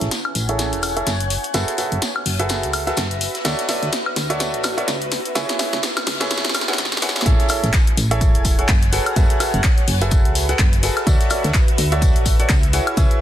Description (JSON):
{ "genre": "piano house", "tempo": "126 BPM", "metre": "4/4", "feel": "swing 58% on 16ths", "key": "A major", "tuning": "A4 = 445 Hz", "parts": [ { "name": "clear upright piano", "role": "riff", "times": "0.0-13.2 s", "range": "E4 to F#5", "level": "-24 LUFS", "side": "right 2 dB", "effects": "sidechain pumping, low-pass filter, tape echo" }, { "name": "solid FM bass", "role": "bass", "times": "0.0-13.1 s", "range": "E1 to D2", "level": "-23 LUFS", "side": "equal", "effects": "sidechain pumping" }, { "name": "open jazz drum kit", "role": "drums", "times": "0.0-13.1 s", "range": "hi-hat, snare drum, tambourine", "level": "-32 LUFS", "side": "left 3 dB", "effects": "high-pass filter on hats, high-pass filter on snare, high-pass filter on perc, high-pass filter on room" }, { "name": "punchy analog drum machine", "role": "drums", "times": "0.0-13.2 s", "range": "handclaps, hi-hat, snare drum, woodblock", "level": "-22 LUFS", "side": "left 1 dB", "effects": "overdrive" }, { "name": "granular cloud pad", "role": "texture", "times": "0.0-13.2 s", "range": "C#4 to G#5", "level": "-28 LUFS", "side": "equal", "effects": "built-in reverb, sidechain pumping" }, { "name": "electronic kick drum", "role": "drums", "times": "7.3-13.1 s", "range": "none", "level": "-16 LUFS", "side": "equal", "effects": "none" } ], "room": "light reverb, small room ambience", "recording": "dense, heavily limited modern master, high-pass filter", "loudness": "-16 LUFS", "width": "side -12 dB against mid", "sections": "0.0-7.3 A section; 7.3-13.2 B section", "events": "build-up 0.0-7.3; drum fill 0.0-7.3; filter sweep on upright piano 0.0-7.3; filter sweep 0.0-7.3; drop 7.3-13.2", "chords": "0.0 Amaj7; 1.3 F#m11; 3.4 Dmaj9; 5.1 C#m7; 7.3 Amaj7; 8.9 F#m11; 11.1 Dmaj9" }